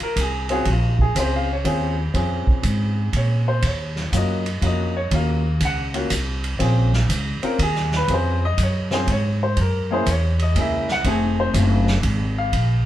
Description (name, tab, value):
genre	jazz piano trio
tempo	121 BPM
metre	3/4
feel	swing 67% on 8ths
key	Bb minor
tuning	A4 = 440 Hz
part	warm baby grand piano	melody	0.0-12.9 s	A3 to G#5	-24 LUFS	left 1 dB	none
part	upright bass	bass	0.0-12.8 s	F1 to Bb2	-21 LUFS	equal	none
part	vintage drum kit	drums	0.0-12.7 s	hi-hat, kick drum, ride cymbal, snare drum	-26 LUFS	right 1 dB	none
room	moderate stone room reverb, RT60 1.1 s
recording	band playing live in one room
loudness	-18 LUFS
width	side -13 dB against mid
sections	0.0-12.9 A section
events	grand piano solo 0.0-12.9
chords	0.0 Bbm7; 3.6 Ebm7; 6.6 Bbm7; 9.6 Gb7; 11.1 F7#9